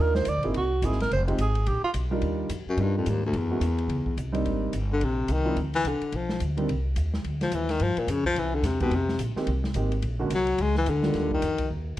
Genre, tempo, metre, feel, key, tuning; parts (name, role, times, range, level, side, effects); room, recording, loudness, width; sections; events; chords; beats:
jazz, small-group swing and bop; 215 BPM; 4/4; swing 60% on 8ths; Eb major; A4 = 441 Hz
breathy tenor saxophone; second line; 0.0-1.9 s; F4 to D5; -28 LUFS; right 3 dB
warm grand piano; accompaniment; 0.0-6.7, 8.8-11.4 s; D3 to A#4; -30 LUFS; right 2 dB
upright bass; bass; 0.0-12.0 s; F1 to Ab2; -28 LUFS; equal
open jazz drum kit; drums; 0.1-12.0 s; hi-hat, kick drum, ride cymbal, snare drum; -36 LUFS; equal
warm baritone saxophone; melody; 2.7-11.7 s; D2 to Ab3; -26 LUFS; left 3 dB; plate reverb
light reverb; dark, warm production; -24 LUFS; side -14 dB against mid
0.0-2.2 A section; 2.2-11.1 A section
tenor saxophone solo 0.0-2.2; baritone saxophone solo 2.2-12.0
0.0 Ebmaj9; 0.5 C7alt; 1.1 Fm7; 1.7 Bb; 2.2 Ebmaj9; 3.3 Gb7; 4.5 Abmaj9#11; 5.6 Cadd9; 6.1 G7; 6.7 Cmadd9; 7.8 Bbm6; 8.4 C7; 8.9 Fm11; 10.0 Bbaug; 11.1 Ebmaj9
0.27 0.55 0.83 | 1.11 1.39 1.66 1.94 | 2.22 2.50 2.78 3.06 | 3.34 3.62 3.90 4.17 | 4.45 4.73 5.01 5.29 | 5.57 5.85 6.13 6.41 | 6.69 6.96 7.24 7.52 | 7.80 8.08 8.36 8.64 | 8.92 9.19 9.47 9.75 | 10.03 10.31 10.59 10.86 | 11.14 11.42 11.70 11.98